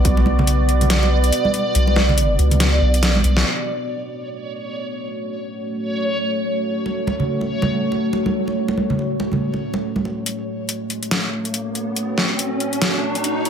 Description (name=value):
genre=deep dubstep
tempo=141 BPM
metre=4/4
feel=swing 59% on 16ths, half-time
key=F# minor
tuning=A4 = 444 Hz
part: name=deep dark ambient pad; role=sustained chords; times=0.0-13.5 s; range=A3 to D5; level=-23 LUFS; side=equal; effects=chorus, built-in reverb
part: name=soft dub sub bass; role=bass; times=0.0-3.4 s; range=B1 to C#2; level=-16 LUFS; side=equal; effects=none
part: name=dubstep drum kit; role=drums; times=0.0-3.4, 10.3-13.5 s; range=hi-hat, snare drum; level=-21 LUFS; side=left 1 dB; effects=overdrive
part: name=backwards swelling texture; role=texture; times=0.0-10.3 s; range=C#5 to D5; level=-28 LUFS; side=equal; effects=built-in reverb
part: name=congas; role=percussion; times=0.2-3.2, 6.9-10.2 s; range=none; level=-23 LUFS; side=right 2 dB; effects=none
part: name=riser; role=sound effects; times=10.9-13.5 s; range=none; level=-26 LUFS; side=left 1 dB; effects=none
room=moderate digital room reverb, RT60 1.1 s, digital ambience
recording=none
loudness=-18 LUFS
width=side -8 dB against mid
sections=0.0-3.5 A section; 3.5-10.3 B section; 10.3-13.5 C section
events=drum fill 3.0-3.5; band accent 3.3; build-up 10.3-13.5; riser 10.9-13.5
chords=0.0 Bm; 3.5 F#m